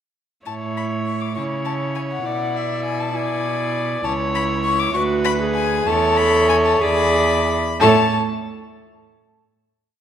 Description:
quick classical-period movement for string quartet; 59-68 BPM (dotted quarters); 6/8; rubato; A major; A4 = 440 Hz
warm violin; melody; 0.5-8.2 s; E5 to D6; -22 LUFS; left 7 dB
dark violin; second line; 0.5-8.2 s; B4 to D5; -24 LUFS; left 1 dB
warm viola; accompaniment; 0.5-8.2 s; E4 to A4; -22 LUFS; right 1 dB
rich cello; bass; 0.5-8.2 s; C#2 to C#3; -23 LUFS; right 4 dB
moderate scoring stage reverb, RT60 1.6 s; -17 LUFS; side -9 dB against mid
0.5-7.8 A section; 7.8-9.7 final chord
0.5 A; 2.3 E7/B; 4.0 C#m; 5.0 Bm/D; 5.9 A/E; 6.8 E7; 7.8 N.C.

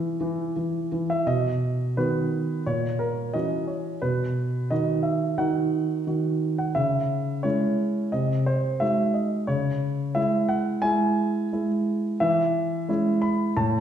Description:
classical-period piano sonatina; 88 BPM; 4/4; straight; B major; A4 = 444 Hz
warm grand piano; solo; 0.0-13.8 s; A2 to B5; -22 LUFS; right 1 dB
wet recital hall reverb, RT60 1.4 s; heard from further back in the room; -22 LUFS; side -9 dB against mid
0.0-1.3 A section; 1.3-13.8 B section
0.0 E; 1.3 B; 2.7 F#7/A#; 4.0 B; 6.8 C#m; 8.1 G#7/B#; 9.5 C#m; 12.2 C#m/E

